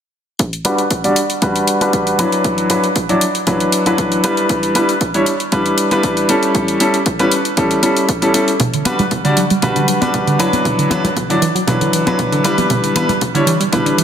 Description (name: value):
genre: nu-disco, nu disco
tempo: 117 BPM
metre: 4/4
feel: straight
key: unclear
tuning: A4 = 440 Hz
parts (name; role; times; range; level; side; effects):
- electronic hi-hat; drums; 0.4-14.0 s; none; -21 LUFS; left 2 dB; none
- electronic kick drum; drums; 0.4-13.8 s; none; -21 LUFS; equal; high-pass filter on kick
- bright baby grand piano; accompaniment; 0.6-14.0 s; F#3 to D5; -14 LUFS; equal; sidechain pumping, low-pass filter, digital delay
- wide unison pluck; arpeggios; 8.6-14.0 s; B2 to G3; -18 LUFS; right 2 dB; sidechain pumping, tape echo
- congas; percussion; 8.9-13.2 s; none; -24 LUFS; left 2 dB; none
room: wet echo chamber reverb, RT60 2.1 s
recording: dense, heavily limited modern master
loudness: -13 LUFS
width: side -8 dB against mid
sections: 0.4-14.0 A section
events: filter sweep on grand piano 0.4-14.0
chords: 0.4 Gmaj7; 4.5 Em7; 6.3 A7; 8.6 Gmaj7; 12.7 Em7